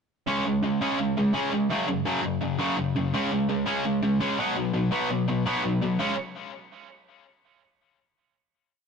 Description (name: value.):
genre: punk.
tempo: 168 BPM.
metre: 4/4.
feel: straight.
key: unclear.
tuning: A4 = 437 Hz.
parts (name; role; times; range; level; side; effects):
distorted electric guitar; solo; 0.3-6.1 s; Gb2 to Db4; -24 LUFS; equal; overdrive, ping-pong delay.
room: moderate stone room reverb, RT60 1.0 s.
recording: rough rehearsal-room recording, tube saturation, nothing above 10.7 kHz.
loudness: -23 LUFS.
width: side -6 dB against mid.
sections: 0.3-6.0 verse; 6.0-7.4 final chord.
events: none.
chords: 0.3 Db5; 1.7 Gb5; 3.1 Db5; 4.4 Cb5; 6.0 Db5.